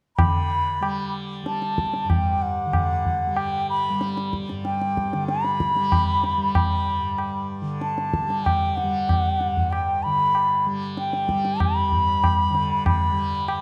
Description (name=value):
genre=indian classical, Hindustani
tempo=95 BPM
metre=5/4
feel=straight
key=G raga bilaval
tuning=A4 = 440 Hz
part: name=reedy bansuri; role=melody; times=0.2-13.6 s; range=F#5 to B5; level=-25 LUFS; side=equal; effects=none
part: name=tanpura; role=drone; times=0.2-13.6 s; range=G2 to G3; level=-32 LUFS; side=equal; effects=none
part: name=tabla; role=percussion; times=0.2-13.6 s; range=none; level=-27 LUFS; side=equal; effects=none
room=moderate scoring stage reverb, RT60 1.8 s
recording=dark, warm production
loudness=-23 LUFS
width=mono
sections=0.2-13.6 A section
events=none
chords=none